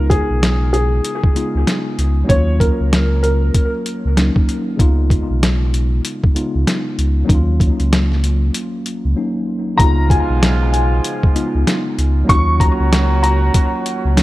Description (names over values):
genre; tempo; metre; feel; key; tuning
hip hop, boom-bap hip-hop; 96 BPM; 4/4; swing 61% on 16ths; unclear; A4 = 440 Hz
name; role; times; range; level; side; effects
warm upright piano; melody; 0.0-3.7, 9.8-13.7 s; Ab4 to Db6; -21 LUFS; left 1 dB; high-pass filter, low-pass filter, dub echo
tine electric piano; accompaniment; 0.0-14.2 s; Eb2 to F4; -22 LUFS; left 1 dB; medium stereo tremolo, high-pass filter, low-pass filter, dub echo
sub bass with octave; bass; 0.0-14.2 s; Cb2 to Eb2; -15 LUFS; equal; none
boom bap sampler-style drum kit; drums; 0.1-14.2 s; hi-hat, kick drum, snare drum; -16 LUFS; equal; none
mellow horn section; stabs; 9.8-14.2 s; Cb3 to Gb4; -24 LUFS; right 6 dB; high-pass filter, low-pass filter, dub echo
room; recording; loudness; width
light reverb; echo-heavy mix; -13 LUFS; side -17 dB against mid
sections
0.0-9.8 A section; 9.8-14.2 B section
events
none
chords
0.0 Db9; 2.3 Ebm7; 4.8 Db9; 7.3 Ebm7; 9.8 Db9; 12.3 Ebm7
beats
0.42 1.04 1.67 | 2.29 2.92 3.54 4.17 | 4.79 5.42 6.04 6.67 | 7.29 7.92 8.54 9.17 | 9.79 10.42 11.04 11.67 | 12.29 12.92 13.54 14.17